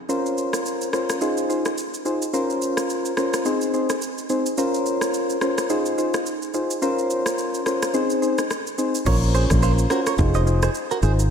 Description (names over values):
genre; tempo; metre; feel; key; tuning
afrobeats; 107 BPM; 4/4; swing 58% on 16ths; Bb minor; A4 = 440 Hz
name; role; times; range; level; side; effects
soft electric-piano-like synth keys; accompaniment; 0.1-11.2 s; C4 to C5; -22 LUFS; left 1 dB; chorus
afro-pop drum kit; drums; 0.1-11.3 s; crash cymbal, kick drum, rim click, shaker; -27 LUFS; equal; none
direct-recorded clean electric guitar; riff; 9.1-11.1 s; F4 to Eb5; -27 LUFS; right 6 dB; wide subtle chorus, ping-pong delay
fingered electric bass; bass; 9.1-11.3 s; F1 to Bb1; -19 LUFS; equal; none
room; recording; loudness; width
wet lush hall reverb, RT60 2.5 s; dreamy mix soaked in reverb; -20 LUFS; side -7 dB against mid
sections
0.1-9.1 A section; 9.1-11.3 B section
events
none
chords
0.1 Bbmadd9; 1.2 Fm7; 2.3 Bbmadd9; 3.5 Ab; 4.6 Bbmadd9; 5.7 Fm7; 6.8 Bbmadd9; 7.9 Ab; 9.1 Bbmadd9; 10.2 Fm7